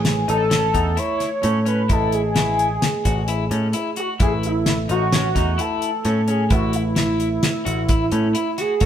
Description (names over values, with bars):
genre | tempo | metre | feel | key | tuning
progressive instrumental, band music in an uneven meter | 130 BPM | 5/4 | straight | A lydian | A4 = 440 Hz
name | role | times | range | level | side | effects
pulse-width lead | melody | 0.0-8.9 s | E4 to C#5 | -22 LUFS | equal | chorus
bell-like tine electric piano | accompaniment | 0.0-8.9 s | A3 to E5 | -31 LUFS | right 6 dB | none
picked electric bass | bass | 0.0-8.9 s | A1 to A2 | -22 LUFS | equal | none
damped 70s drum kit | drums | 0.0-8.9 s | hi-hat, kick drum, snare drum | -22 LUFS | equal | none
electric guitar at the edge of break-up | arpeggios | 0.3-8.9 s | C#4 to F#4 | -27 LUFS | left 4 dB | none
room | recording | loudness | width
moderate stone room reverb, RT60 1.2 s | band playing live in one room | -18 LUFS | side -10 dB against mid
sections
0.0-8.9 A section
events
none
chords
0.0 Amaj9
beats
0.05 0.52 0.98 1.44 | 1.90 2.36 2.82 3.28 3.74 | 4.21 4.67 5.13 5.59 6.05 | 6.51 6.97 7.43 7.89 8.35 | 8.81